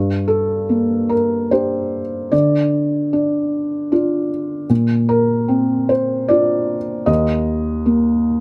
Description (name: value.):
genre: neoclassical minimalist piano.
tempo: 75 BPM.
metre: 3/4.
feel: rubato.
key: G minor.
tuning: A4 = 441 Hz.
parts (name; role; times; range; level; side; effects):
felt-muted upright piano; solo; 0.0-8.4 s; Eb2 to Eb5; -18 LUFS; equal; none.
room: little or no reverb.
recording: close, detailed microphones.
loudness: -18 LUFS.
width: mono.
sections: 0.0-8.4 A section.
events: none.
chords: 0.0 Gm; 2.3 Dm; 4.7 Bbadd9; 7.1 Eb5.